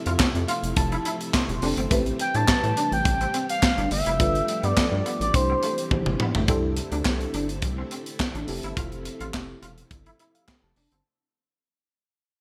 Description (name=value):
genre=early-eighties boogie funk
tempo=105 BPM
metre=4/4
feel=straight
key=unclear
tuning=A4 = 439 Hz
part: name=FM electric piano with soft pad layer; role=accompaniment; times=0.0-11.0 s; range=E3 to C6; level=-34 LUFS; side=equal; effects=chorus, phaser
part: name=string machine, full ensemble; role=sustained chords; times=0.0-11.0 s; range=C3 to G4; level=-38 LUFS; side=equal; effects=ensemble chorus
part: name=clean electric guitar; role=riff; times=0.1-11.0 s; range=G3 to F4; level=-36 LUFS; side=equal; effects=ensemble chorus
part: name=rubbery square bass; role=bass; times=0.1-11.0 s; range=E1 to A2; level=-31 LUFS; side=equal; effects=none
part: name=tight funk drum kit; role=drums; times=0.1-11.0 s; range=handclaps, hi-hat, kick drum, snare drum, toms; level=-27 LUFS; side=equal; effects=gated reverb
part: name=expressive synth lead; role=melody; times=2.2-6.2 s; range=C5 to A5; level=-29 LUFS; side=equal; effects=chorus, digital delay
room=light reverb, small room ambience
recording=bright 1980s-style digital production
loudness=-24 LUFS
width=mono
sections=0.0-6.5 A section; 6.5-11.1 B section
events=FM electric piano fill 0.2-1.9, 9.9-11.1; drum fill 5.9-6.5; fade-out 6.5-11.1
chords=0.0 Fmaj7; 1.9 Am9; 4.2 G9; 5.3 Cmaj7; 6.5 C69; 8.5 Fmaj7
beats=0.20 0.77 1.34 | 1.91 2.48 3.05 3.62 | 4.20 4.77 5.34 5.91 | 6.48 7.05 7.62 8.20 | 8.77 9.34 9.91 10.48